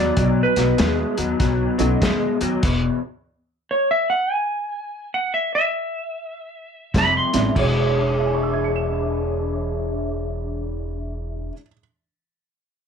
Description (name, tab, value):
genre	electric blues shuffle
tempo	97 BPM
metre	4/4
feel	swing 63% on 8ths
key	E mixolydian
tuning	A4 = 439 Hz
part	clean lap steel guitar	melody	0.0-7.6 s	B4 to C6	-22 LUFS	right 2 dB	none
part	electric guitar through a small old amp	riff	0.0-3.0, 6.9-11.5 s	E2 to C#5	-22 LUFS	left 2 dB	ensemble chorus
part	upright bass	bass	0.0-2.9, 6.9-11.5 s	E1 to D#2	-25 LUFS	equal	none
part	vintage drum kit	drums	0.2-2.8, 6.9-7.7 s	crash cymbal, hi-hat, kick drum, snare drum	-24 LUFS	equal	none
part	dark upright piano	accompaniment	1.8-2.0, 7.3-11.8 s	E2 to E7	-27 LUFS	right 6 dB	none
room	light reverb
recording	none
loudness	-19 LUFS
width	side -6 dB against mid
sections	0.0-7.6 A section; 7.6-10.0 B section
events	electric slide guitar solo 0.0-7.6; stop 2.6-6.9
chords	0.0 B; 2.6 E5; 6.9 F; 7.6 E13